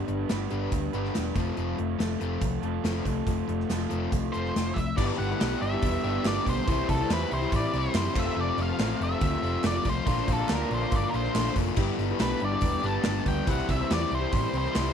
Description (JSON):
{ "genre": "classic rock", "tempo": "141 BPM", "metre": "4/4", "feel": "straight", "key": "unclear", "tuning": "A4 = 439 Hz", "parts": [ { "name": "crunchy overdriven guitar", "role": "riff", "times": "0.0-14.9 s", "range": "F2 to G4", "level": "-31 LUFS", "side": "left 15 dB", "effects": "none" }, { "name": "raw garage guitar", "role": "riff", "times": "0.0-14.9 s", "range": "F2 to B4", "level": "-33 LUFS", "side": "right 16 dB", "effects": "overdrive" }, { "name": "hollow-body short-scale picked electric bass", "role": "bass", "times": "0.0-14.9 s", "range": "E1 to F#2", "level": "-31 LUFS", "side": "right 1 dB", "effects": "none" }, { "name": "gated 80s drum kit", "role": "drums", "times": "0.1-14.8 s", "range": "crash cymbal, hi-hat, kick drum, snare drum", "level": "-29 LUFS", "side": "right 1 dB", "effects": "none" }, { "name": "octave-fuzz lead guitar", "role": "melody", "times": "4.3-14.9 s", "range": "A4 to A5", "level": "-32 LUFS", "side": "equal", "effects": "distortion, slapback echo" }, { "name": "tack piano", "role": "accompaniment", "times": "5.0-14.9 s", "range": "E4 to D5", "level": "-38 LUFS", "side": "left 12 dB", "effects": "none" }, { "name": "group handclap", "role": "percussion", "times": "5.4-14.8 s", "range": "none", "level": "-42 LUFS", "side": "right 18 dB", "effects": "none" } ], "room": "little or no reverb", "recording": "none", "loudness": "-25 LUFS", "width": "side -8 dB against mid", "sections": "0.0-5.0 A section; 5.0-14.9 B section", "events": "none", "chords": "0.0 G; 1.4 F; 5.0 G6; 6.7 C; 8.2 F; 10.1 Bb; 11.8 G6; 13.5 C", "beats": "0.29 0.72 1.14 | 1.57 2.00 2.42 2.85 | 3.27 3.70 4.13 4.55 | 4.98 5.40 5.83 6.25 | 6.68 7.10 7.53 7.95 | 8.38 8.80 9.23 9.65 | 10.08 10.50 10.93 11.35 | 11.78 12.20 12.62 13.05 | 13.47 13.90 14.32 14.75" }